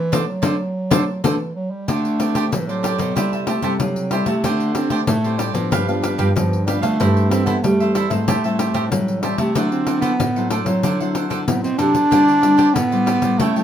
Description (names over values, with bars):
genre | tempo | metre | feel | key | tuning
samba and choro | 94 BPM | 4/4 | straight | unclear | A4 = 441 Hz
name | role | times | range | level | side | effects
warm bass clarinet | melody | 0.0-13.6 s | E3 to D4 | -20 LUFS | right 1 dB | none
cavaquinho | accompaniment | 0.1-13.6 s | D4 to A5 | -26 LUFS | right 4 dB | none
nylon-string guitar | accompaniment | 0.1-13.6 s | G2 to G4 | -25 LUFS | left 4 dB | none
nylon-string guitar | bass | 0.1-13.6 s | G2 to G3 | -23 LUFS | right 1 dB | none
pandeiro | percussion | 0.1-13.6 s | none | -23 LUFS | left 4 dB | none
room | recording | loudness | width
moderate studio reverb, RT60 0.7 s | minimal, uncompressed stereo recording | -16 LUFS | side -9 dB against mid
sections
0.0-1.9 A section; 1.9-13.6 B section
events
band accent 0.0-1.9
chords
0.0 D7; 1.9 D7sus4; 3.2 Am7/C; 4.4 D7sus4; 5.7 G7; 7.0 C6/G; 8.3 Am7; 9.6 D9; 12.1 D9sus4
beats
0.60 1.24 | 1.88 2.52 3.16 3.80 | 4.44 5.08 5.72 6.36 | 7.00 7.64 8.28 8.92 | 9.56 10.20 10.84 11.48 | 12.12 12.76 13.40